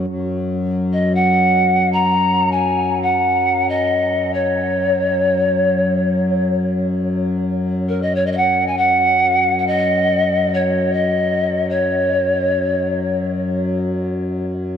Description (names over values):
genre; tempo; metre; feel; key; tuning
world meditative, free-time meditation music; free time; none; none; F# major pentatonic; A4 = 439 Hz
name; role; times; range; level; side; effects
pedal harmonium; drone; 0.0-14.8 s; F#2; -20 LUFS; left 2 dB; none
reedy pan flute; melody; 0.9-13.3 s; A#4 to A#5; -17 LUFS; equal; ping-pong delay
room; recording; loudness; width
moderate huge ambient reverb, RT60 8.4 s; dark, warm production; -15 LUFS; side -8 dB against mid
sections
0.1-14.8 A section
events
none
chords
none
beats
free time